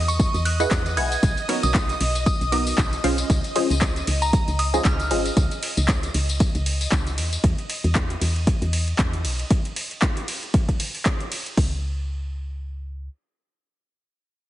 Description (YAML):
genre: deep house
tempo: 116 BPM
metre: 4/4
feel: swing 57% on 16ths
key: unclear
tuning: A4 = 440 Hz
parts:
  - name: woody FM bass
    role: bass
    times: 0.0-13.1 s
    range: Ab1 to E2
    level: -25 LUFS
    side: equal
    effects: sidechain pumping
  - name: string machine, violins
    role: texture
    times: 0.0-9.5 s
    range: Eb5 to Eb6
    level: -35 LUFS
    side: equal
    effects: ensemble chorus, sidechain pumping
  - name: soft synth bell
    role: melody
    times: 0.1-5.1 s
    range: Bb5 to G#6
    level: -28 LUFS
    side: right 2 dB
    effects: chorus, digital delay
  - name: deep house drum kit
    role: drums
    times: 0.1-11.6 s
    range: handclaps, hi-hat, ride cymbal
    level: -28 LUFS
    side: equal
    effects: overdrive
  - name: tambourine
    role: percussion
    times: 0.1-7.4 s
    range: none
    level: -32 LUFS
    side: left 4 dB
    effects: none
  - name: deep house drum kit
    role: drums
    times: 0.2-11.7 s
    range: hi-hat, kick drum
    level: -21 LUFS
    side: equal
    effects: overdrive
  - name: filtered dub chord stab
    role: stabs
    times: 0.6-5.2 s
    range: Cb4 to F#5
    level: -25 LUFS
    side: equal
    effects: phaser, wide subtle chorus, sidechain pumping
room: light reverb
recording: heavily compressed radio sound, nothing above 10.5 kHz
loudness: -20 LUFS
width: side -14 dB against mid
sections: 0.0-11.6 A section; 11.6-14.5 B section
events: drop 0.0-11.6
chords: 0.0 Emaj9; 1.2 Cbmaj9; 3.3 Dbmaj9; 7.2 E5; 9.5 N.C.